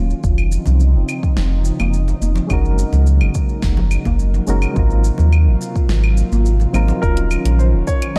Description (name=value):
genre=sunset chillout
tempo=106 BPM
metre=4/4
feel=straight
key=unclear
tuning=A4 = 440 Hz
part: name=airy breathy pad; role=sustained chords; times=0.0-8.2 s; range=C3 to F4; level=-28 LUFS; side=equal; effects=chorus
part: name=warm sub bass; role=bass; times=0.0-8.2 s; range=Eb1 to Eb2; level=-17 LUFS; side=equal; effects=none
part: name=deep house drum kit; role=drums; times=0.1-8.2 s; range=claves, hi-hat, shaker, snare drum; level=-30 LUFS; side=equal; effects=none
part: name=electronic kick drum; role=drums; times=0.2-8.2 s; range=none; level=-21 LUFS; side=equal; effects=none
part: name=congas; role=percussion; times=0.7-7.6 s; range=none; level=-30 LUFS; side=equal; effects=none
part: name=soft electric-piano-like synth keys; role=accompaniment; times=2.5-8.2 s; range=Gb3 to Bb4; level=-28 LUFS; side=equal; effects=chorus, tremolo, delay
part: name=warm grand piano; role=melody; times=7.0-8.2 s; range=Bb4 to Db5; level=-26 LUFS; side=equal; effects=none
room=little or no reverb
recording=dark, warm production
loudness=-16 LUFS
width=mono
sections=0.0-8.2 A section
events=none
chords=0.2 Dbmaj9/F; 2.5 Gb6; 4.8 Ab13; 7.0 Ebm9